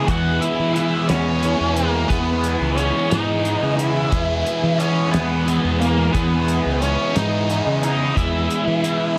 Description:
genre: psychedelic rock.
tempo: 59 BPM (dotted quarters).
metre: 6/8.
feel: straight.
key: E major.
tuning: A4 = 440 Hz.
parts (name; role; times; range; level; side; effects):
octave-fuzz lead guitar; melody; 0.0-9.2 s; A#3 to F#4; -25 LUFS; equal; wah, distortion, tape echo.
warm symphonic string section; sustained chords; 0.0-9.2 s; E3 to G#5; -32 LUFS; equal; none.
biting overdriven guitar; riff; 0.0-9.2 s; E3 to E4; -25 LUFS; equal; phaser.
fuzz fingered electric bass; bass; 0.0-9.2 s; C#2 to E3; -24 LUFS; equal; overdrive.
cloth-damped thuddy drum kit; drums; 0.1-9.0 s; hi-hat, kick drum, snare drum; -26 LUFS; equal; none.
room: light reverb, small room ambience.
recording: none.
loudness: -20 LUFS.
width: mono.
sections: 0.0-9.2 A section.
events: none.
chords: 0.0 E.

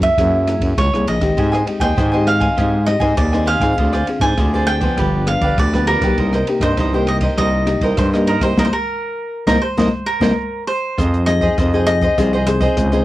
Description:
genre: samba and choro.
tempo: 100 BPM.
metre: 4/4.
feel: straight.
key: C minor.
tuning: A4 = 440 Hz.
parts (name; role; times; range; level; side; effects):
cavaquinho; melody; 0.0-13.0 s; Bb4 to Ab5; -20 LUFS; right 1 dB; cassette tape.
nylon-string guitar; accompaniment; 0.0-13.0 s; G2 to G#4; -22 LUFS; left 3 dB; cassette tape.
growling FM bass; bass; 0.0-13.0 s; G1 to Ab2; -18 LUFS; equal; none.
open jazz drum kit; drums; 0.0-13.0 s; hi-hat, kick drum, ride cymbal, rim click, snare drum; -22 LUFS; equal; none.
cavaquinho; accompaniment; 1.4-13.0 s; Eb4 to Ab5; -22 LUFS; right 1 dB; cassette tape.
room: light reverb.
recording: home recording on cassette.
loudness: -14 LUFS.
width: side -16 dB against mid.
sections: 0.0-11.0 A section; 11.0-13.0 B section.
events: band accent 8.6-11.0.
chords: 0.0 F#9; 1.4 Abmaj7; 3.8 Dm7b5; 5.0 G7; 6.2 Cm7; 11.0 Fm7.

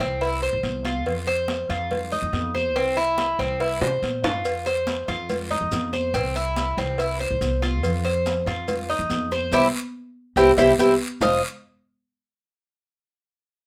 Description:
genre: latin, Cuban son and guajira.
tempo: 142 BPM.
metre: 4/4.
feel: straight.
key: unclear.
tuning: A4 = 440 Hz.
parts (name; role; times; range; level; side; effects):
Cuban tres; arpeggios; 0.0-11.4 s; C4 to Eb5; -24 LUFS; equal; none.
upright bass; bass; 0.0-11.4 s; F1 to C3; -32 LUFS; equal; none.
congas; percussion; 0.0-11.3 s; none; -33 LUFS; equal; none.
cowbell and bongos; percussion; 0.0-11.3 s; none; -32 LUFS; equal; none.
guiro; percussion; 0.0-11.3 s; none; -39 LUFS; equal; none.
maracas; percussion; 4.5-11.3 s; none; -42 LUFS; equal; none.
room: moderate studio ambience, RT60 0.5 s.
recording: none.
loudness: -23 LUFS.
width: mono.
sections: 0.0-11.2 A section; 11.2-12.9 B section.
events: drum fill 3.8-4.5, 10.4-11.2; band accent 9.5-11.2.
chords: 0.0 C; 1.1 F5; 2.8 C; 4.5 F5; 6.1 C; 7.8 F5; 9.5 C; 11.2 F5.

